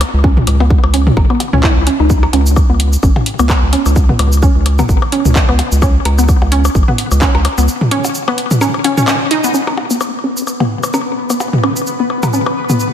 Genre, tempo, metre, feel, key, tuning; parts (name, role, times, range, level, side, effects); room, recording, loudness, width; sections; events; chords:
minimal techno; 129 BPM; 4/4; swing 56% on 16ths; A4 = 442 Hz
round analog bass; bass; 0.0-7.7 s; G#1 to C#2; -12 LUFS; equal; sidechain pumping
booming analog drum machine; drums; 0.0-12.9 s; handclaps, hi-hat, shaker; -21 LUFS; right 1 dB
electronic percussion blips and toms; percussion; 0.0-12.8 s; -18 LUFS; left 2 dB; overdrive, ping-pong delay
resonant blip pluck; riff; 0.2-12.7 s; B3 to E4; -17 LUFS; equal; chorus, sidechain pumping, ping-pong delay
electronic kick drum; drums; 0.2-7.3 s; -12 LUFS; equal
pulsing gated texture; texture; 10.1-12.9 s; B3 to B4; -21 LUFS; left 1 dB; chorus, built-in reverb, sidechain pumping
light reverb, digital ambience; -10 LUFS; side -9 dB against mid
0.0-9.5 A section; 9.5-12.9 B section
filter sweep on synth arpeggio sound 0.0-9.5, 9.5-12.9; break 7.7-9.5
0.0 N.C.; 9.5 Bsus2